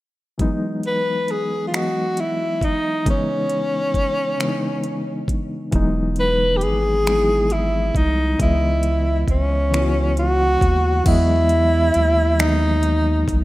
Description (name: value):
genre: slow six-eight R&B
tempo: 45 BPM (dotted quarters)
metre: 6/8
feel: straight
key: E major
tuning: A4 = 440 Hz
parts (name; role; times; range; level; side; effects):
- reed electric piano; accompaniment; 0.4-13.4 s; C#3 to D#5; -24 LUFS; left 1 dB; fast tremolo
- smooth R&B drum kit; drums; 0.4-13.4 s; crash cymbal, finger snaps, hi-hat, kick drum; -23 LUFS; equal; none
- breathy tenor saxophone; melody; 0.9-13.4 s; C#4 to B4; -20 LUFS; equal; none
- round analog bass; bass; 5.7-13.4 s; E1 to E2; -20 LUFS; equal; none
room: moderate lush hall reverb, RT60 2.2 s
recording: rough home demo mix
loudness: -17 LUFS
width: side -17 dB against mid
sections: 0.4-11.1 A section; 11.1-13.4 B section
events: none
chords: 0.4 Emaj9; 3.1 C#m9; 5.7 Emaj9; 8.4 C#m9; 11.1 Emaj9